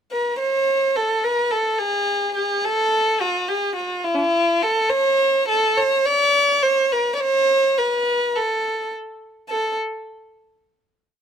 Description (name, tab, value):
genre	arabic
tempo	106 BPM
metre	4/4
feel	straight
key	A maqam huzam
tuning	A4 = 441 Hz
part	rich violin	solo	0.1-9.8 s	D4-43c to D5-37c	-18 LUFS	equal	none
room	moderate spring reverb, RT60 1.2 s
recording	none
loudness	-18 LUFS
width	side -8 dB against mid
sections	0.0-0.4 pickup bar; 0.4-9.5 A section; 9.5-11.2 final note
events	none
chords	none